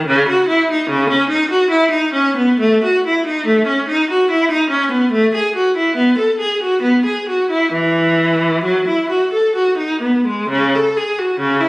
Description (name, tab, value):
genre	classical, baroque-style suite movement for unaccompanied viola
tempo	62-73 BPM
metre	3/4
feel	rubato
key	unclear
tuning	A4 = 441 Hz
part	rich viola	solo	0.0-11.7 s	C#3 to A4	-13 LUFS	equal	none
room	moderate stone room reverb, RT60 1.3 s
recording	recorded on a phone in the room, studio reverb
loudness	-13 LUFS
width	side -24 dB against mid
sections	0.0-10.5 A section; 10.5-11.7 A section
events	none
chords	none